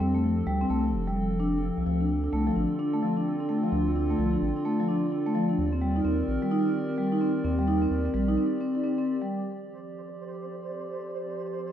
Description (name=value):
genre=IDM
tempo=129 BPM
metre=4/4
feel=swing 62% on 16ths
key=F mixolydian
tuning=A4 = 441 Hz
part: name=warbly tape-like pad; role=sustained chords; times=0.0-11.7 s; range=D3 to D5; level=-34 LUFS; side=right 4 dB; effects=chorus, built-in reverb
part: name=vibraphone with soft mallets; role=arpeggios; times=0.0-9.3 s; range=F3 to Eb4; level=-26 LUFS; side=left 1 dB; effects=ping-pong delay
part: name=round analog bass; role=bass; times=0.0-8.4 s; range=F1 to F2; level=-30 LUFS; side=right 1 dB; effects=none
part: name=flickering grainy texture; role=texture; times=9.8-11.7 s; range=C5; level=-39 LUFS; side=right 2 dB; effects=built-in reverb
room=moderate small room reverb, RT60 0.5 s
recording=rough home demo mix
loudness=-25 LUFS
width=side -10 dB against mid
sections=0.0-9.3 A section; 9.3-11.7 B section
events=break 8.4-9.3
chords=0.0 F69; 1.9 Dm7; 5.6 Cm9; 9.3 F69